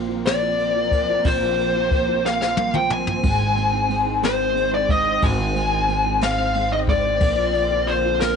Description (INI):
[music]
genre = six-eight pop ballad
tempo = 60 BPM (dotted quarters)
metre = 6/8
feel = straight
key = unclear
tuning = A4 = 440 Hz
[part]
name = felt-muted upright piano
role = accompaniment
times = 0.0-8.4 s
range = Eb3 to F4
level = -28 LUFS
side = right 14 dB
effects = none
[part]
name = dark studio string section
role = sustained chords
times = 0.0-8.4 s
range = D3 to F4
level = -29 LUFS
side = left 2 dB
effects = none
[part]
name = upright bass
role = bass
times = 0.0-8.4 s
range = Ab1 to Bb1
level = -27 LUFS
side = equal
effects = none
[part]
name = fuzz lead guitar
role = melody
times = 0.3-8.4 s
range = Bb4 to Ab5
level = -20 LUFS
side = left 2 dB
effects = distortion
[part]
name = jazz brush drum kit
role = drums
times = 0.3-8.4 s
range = kick drum, ride cymbal, snare drum, toms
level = -26 LUFS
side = left 2 dB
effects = none
[sound]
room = light reverb, small room ambience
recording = 1960s-style stereo, nothing above 10.4 kHz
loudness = -18 LUFS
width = side -6 dB against mid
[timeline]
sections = 0.0-8.4 A section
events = drum fill 2.2-3.2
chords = 0.0 Bbsus2; 3.2 Ab; 7.2 Bbadd9